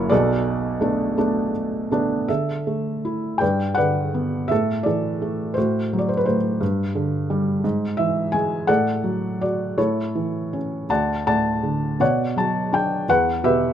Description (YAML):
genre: classical, lyrical solo piano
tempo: 53-58 BPM (dotted quarters)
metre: 6/8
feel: rubato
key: D major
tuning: A4 = 442 Hz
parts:
  - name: felt-muted upright piano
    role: solo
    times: 0.0-13.7 s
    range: F#1 to A5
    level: -19 LUFS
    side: equal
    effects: none
room: light reverb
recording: close, detailed microphones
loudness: -20 LUFS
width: side -9 dB against mid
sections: 0.0-2.3 A section; 2.3-13.7 B section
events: none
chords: 0.1 Bm7; 2.3 Dsus2; 3.4 G; 4.5 Asus4; 5.6 Am69; 6.6 G5; 7.6 E/G#; 8.7 D/A; 9.8 A; 10.9 D; 12.0 Bmadd9; 13.1 Em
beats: | 0.12 1.18 | 2.29 3.42 | 4.50 5.57 | 6.61 7.64 | 8.69 9.78 | 10.90 12.01 | 13.09